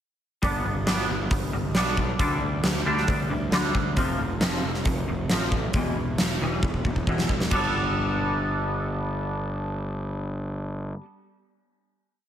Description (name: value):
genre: quiet-loud alternative rock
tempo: 136 BPM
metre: 4/4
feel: straight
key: G mixolydian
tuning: A4 = 438 Hz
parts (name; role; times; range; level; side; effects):
- twangy electric guitar; arpeggios; 0.4-11.0 s; E2 to A4; -28 LUFS; equal; analog chorus, slapback echo
- fuzz picked electric bass; bass; 0.4-10.9 s; E1 to D2; -29 LUFS; equal; overdrive
- huge arena drum kit; drums; 0.4-7.6 s; crash cymbal, hi-hat, kick drum, snare drum; -26 LUFS; equal; none
room: moderate lush hall reverb, RT60 1.8 s, small room ambience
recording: big arena sound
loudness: -23 LUFS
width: side -10 dB against mid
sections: 0.4-7.5 verse; 7.5-11.0 final chord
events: drum fill 6.6-7.5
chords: 0.4 G; 2.2 Dsus4; 4.0 F; 5.7 E5; 7.5 Gadd9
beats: | 0.42 0.87 1.31 1.75 | 2.20 2.64 3.08 3.53 | 3.97 4.42 4.86 5.31 | 5.75 6.19 6.63 7.08 | 7.52 7.96 8.40 8.84 | 9.28 9.71 10.15 10.59